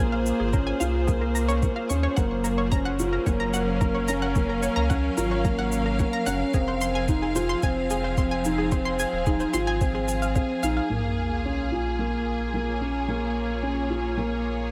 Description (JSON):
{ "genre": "piano and strings electronica", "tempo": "110 BPM", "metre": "4/4", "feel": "straight", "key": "Bb minor", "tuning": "A4 = 440 Hz", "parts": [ { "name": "rich studio string section", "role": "sustained chords", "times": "0.0-14.7 s", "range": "F3 to F5", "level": "-32 LUFS", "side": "equal", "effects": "none" }, { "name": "analog pluck", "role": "arpeggios", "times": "0.0-10.8 s", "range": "Ab4 to Db6", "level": "-34 LUFS", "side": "equal", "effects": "chorus, sidechain pumping, delay" }, { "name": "felt-muted upright piano", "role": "riff", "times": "0.0-14.7 s", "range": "Bb3 to F4", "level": "-29 LUFS", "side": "equal", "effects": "low-pass filter, delay" }, { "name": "warm sub bass", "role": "bass", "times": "0.0-14.7 s", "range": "Eb1 to Eb2", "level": "-32 LUFS", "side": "equal", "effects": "sidechain pumping" }, { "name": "shaker", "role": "drums", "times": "0.3-10.7 s", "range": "none", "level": "-40 LUFS", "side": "equal", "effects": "none" }, { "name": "electronic kick drum", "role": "drums", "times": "0.5-10.5 s", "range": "none", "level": "-28 LUFS", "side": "equal", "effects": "none" }, { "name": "sub drop", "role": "sound effects", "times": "10.9-13.1 s", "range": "none", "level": "-36 LUFS", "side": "equal", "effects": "none" } ], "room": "light reverb, digital ambience", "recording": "none", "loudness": "-25 LUFS", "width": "mono", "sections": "0.0-10.9 A section; 10.9-14.7 B section", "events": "impact 10.9-13.1; filter sweep on felt piano 10.9-14.7", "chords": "0.0 Bbm7; 2.2 Gbmaj7; 6.5 Fm; 10.9 Bbm7" }